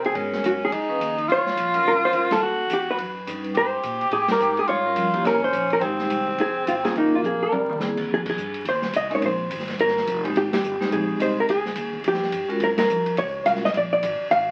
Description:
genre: jazz, small-group swing and bop.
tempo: 212 BPM.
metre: 4/4.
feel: swing 62% on 8ths.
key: F minor.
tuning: A4 = 440 Hz.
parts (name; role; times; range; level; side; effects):
hollow-body jazz guitar; melody; 0.0-14.5 s; Eb4 to F5; -25 LUFS; equal; none.
warm tenor saxophone; second line; 0.0-8.0 s; G3 to G4; -26 LUFS; equal; none.
upright bass; bass; 0.0-14.5 s; F1 to C3; -38 LUFS; equal; none.
open jazz drum kit; drums; 0.0-14.4 s; crash cymbal, hi-hat, kick drum, ride cymbal, snare drum, toms; -34 LUFS; equal; none.
vibraphone with medium hard mallets; accompaniment; 0.1-13.6 s; F3 to Eb5; -31 LUFS; equal; none.
room: wet small room reverb, RT60 0.5 s.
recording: very old 78 rpm record, vinyl crackle.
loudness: -23 LUFS.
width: mono.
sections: 0.0-8.1 A section; 8.1-14.5 B section.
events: band accent 2.3, 4.3, 8.2, 10.5, 12.8; drum fill 7.2-7.8.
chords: 0.2 Abm9; 0.7 Db9; 1.3 Gbmaj7; 2.4 Eb7alt; 3.6 Abmaj7; 4.7 Gm7b5; 5.3 C5; 5.8 Fm9; 7.0 Gm7b5; 7.5 C7b13; 8.1 Fm9; 9.2 Bbsus2; 9.8 Ebadd9; 10.4 Abmaj7; 11.5 Dbadd9; 12.6 Gbmaj9; 13.7 Bb7.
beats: | 0.15 0.44 0.72 1.00 | 1.29 1.57 1.85 2.14 | 2.42 2.70 2.99 3.27 | 3.55 3.84 4.12 4.40 | 4.69 4.97 5.25 5.54 | 5.82 6.11 6.39 6.67 | 6.96 7.24 7.52 7.81 | 8.09 8.37 8.65 8.94 | 9.22 9.50 9.79 10.07 | 10.35 10.63 10.92 11.20 | 11.48 11.77 12.05 12.33 | 12.62 12.90 13.18 13.46 | 13.75 14.03 14.31.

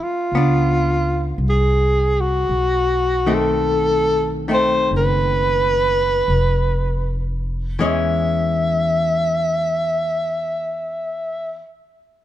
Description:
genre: jazz ballad.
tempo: 37-59 BPM.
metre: 4/4.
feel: swing 66% on 8ths.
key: E major.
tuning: A4 = 439 Hz.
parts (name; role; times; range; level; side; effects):
clear alto saxophone; melody; 0.0-11.6 s; F4 to E5; -19 LUFS; equal; none.
archtop guitar, miked and amplified; accompaniment; 0.0-11.7 s; D#3 to D4; -23 LUFS; left 2 dB; none.
upright bass; bass; 0.3-11.6 s; F1 to E2; -22 LUFS; equal; none.
room: light reverb.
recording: minimal, uncompressed stereo recording.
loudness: -16 LUFS.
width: side -12 dB against mid.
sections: 0.0-2.5 A section; 2.5-7.8 B section; 7.8-12.2 C section.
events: slowing down 0.0-7.8.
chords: 0.3 C#7b9; 2.5 B7b9; 7.8 E6.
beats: 0.33 1.39 | 2.50 3.67 4.91 6.27 | 7.79 9.40 11.01.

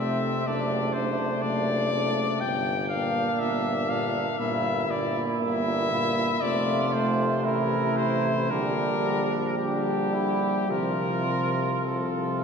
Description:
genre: classical, hymn-like piece for brass band.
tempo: 52-63 BPM.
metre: 4/4.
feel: rubato.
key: F major.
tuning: A4 = 440 Hz.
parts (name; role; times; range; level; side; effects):
clear cornet; melody; 0.0-12.4 s; G4 to G5; -29 LUFS; left 4 dB; none.
warm flugelhorn; second line; 0.0-12.4 s; C4 to F4; -31 LUFS; right 6 dB; none.
clear euphonium; accompaniment; 0.0-12.4 s; F3 to Bb3; -30 LUFS; left 1 dB; none.
clear trombone; accompaniment; 0.0-12.4 s; Bb2 to D3; -32 LUFS; right 1 dB; none.
clear tuba; bass; 0.0-12.4 s; F1 to C2; -31 LUFS; equal; none.
room: wet church reverb, RT60 2.7 s.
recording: nothing above 10.7 kHz.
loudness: -23 LUFS.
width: side -6 dB against mid.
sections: 0.0-12.4 A section.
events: none.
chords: 0.5 D7/F#; 2.4 Gm; 6.4 F; 8.5 Gm/Bb; 10.7 F/C.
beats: 0.47 1.43 | 2.41 3.40 4.39 5.41 | 6.42 7.45 8.51 9.58 | 10.69 11.84.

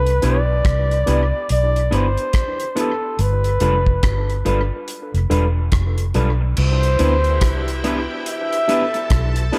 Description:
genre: lovers rock reggae.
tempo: 71 BPM.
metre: 4/4.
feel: swing 61% on 16ths.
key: C major.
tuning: A4 = 441 Hz.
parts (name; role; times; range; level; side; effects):
mellow flugelhorn; melody; 0.0-9.5 s; A4 to E5; -24 LUFS; equal; tape echo.
vintage muted fingered electric bass; bass; 0.0-9.5 s; E1 to D2; -21 LUFS; equal; none.
damped 70s drum kit; drums; 0.1-9.6 s; crash cymbal, hi-hat, kick drum, rim click; -24 LUFS; equal; gated reverb.
mellow tine electric piano; accompaniment; 0.2-9.6 s; D4 to B4; -30 LUFS; equal; dub echo.
electric guitar through a small old amp; stabs; 0.2-9.6 s; G3 to B4; -29 LUFS; equal; none.
clear saxophone section; second line; 6.6-9.5 s; B2 to E4; -33 LUFS; equal; none.
string machine, violins; second line; 6.6-9.6 s; G4 to A5; -34 LUFS; equal; ensemble chorus, dub echo.
room: light reverb, studio reverb.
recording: none.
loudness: -19 LUFS.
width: mono.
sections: 0.0-6.6 A section; 6.6-9.6 B section.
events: none.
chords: 0.0 Cmaj7; 3.2 G7; 6.6 Cmaj7.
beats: 0.65 1.50 2.34 | 3.19 4.04 4.88 5.73 | 6.58 7.42 8.27 9.11.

